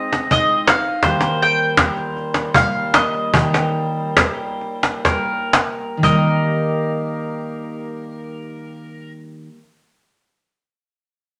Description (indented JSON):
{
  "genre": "acoustic folk duo or small band",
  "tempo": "59-81 BPM",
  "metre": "3/4",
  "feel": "straight",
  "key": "Eb major",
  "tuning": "A4 = 441 Hz",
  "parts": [
    { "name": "mandolin", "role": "melody", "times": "0.0-9.1 s", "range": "C5 to G5", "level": "-22 LUFS", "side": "equal", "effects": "none" },
    { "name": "pedal steel guitar", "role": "second line", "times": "0.0-9.1 s", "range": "Bb4 to Eb5", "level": "-31 LUFS", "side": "equal", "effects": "none" },
    { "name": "picked steel-string acoustic guitar", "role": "accompaniment", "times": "0.0-9.7 s", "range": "Eb3 to C5", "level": "-26 LUFS", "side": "equal", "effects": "none" },
    { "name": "warm woodwind section", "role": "sustained chords", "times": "0.0-9.1 s", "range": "Eb2 to G4", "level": "-35 LUFS", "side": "equal", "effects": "none" },
    { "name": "cajon", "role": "percussion", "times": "0.1-6.5 s", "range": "none", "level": "-19 LUFS", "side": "equal", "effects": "none" }
  ],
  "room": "wet studio reverb, RT60 0.8 s",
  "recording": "none",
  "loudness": "-18 LUFS",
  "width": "mono",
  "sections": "0.0-6.0 A section; 6.0-9.1 B section",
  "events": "slowing down 1.0-6.0",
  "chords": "0.0 Ab6; 1.0 Eb",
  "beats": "0.31 | 1.04 1.79 2.55 | 3.34 4.18 5.07 | 6.04 7.05 8.06"
}